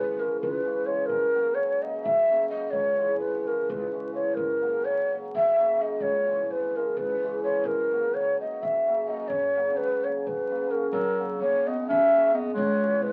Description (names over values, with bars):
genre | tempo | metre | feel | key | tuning
balkan folk, Balkan wedding band | 256 BPM (eighths) | 7/8 | straight | F# mixolydian | A4 = 445 Hz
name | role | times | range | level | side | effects
breathy mellow ney | melody | 0.0-13.1 s | A#4 to E5 | -26 LUFS | equal | none
cimbalom | accompaniment | 0.0-13.1 s | C#3 to C#4 | -35 LUFS | equal | none
upright bass | bass | 0.0-13.1 s | G#1 to F#2 | -44 LUFS | equal | none
clear clarinet | second line | 10.9-13.1 s | F#3 to C#4 | -32 LUFS | equal | none
room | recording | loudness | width
moderate club reverb, RT60 0.5 s | very old 78 rpm record, vinyl crackle | -26 LUFS | mono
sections
0.0-10.9 A section; 10.9-13.1 A section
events
none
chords
0.0 C#m; 1.1 F#; 2.7 C#m; 4.4 F#; 6.0 C#m; 7.6 F#; 12.6 C#m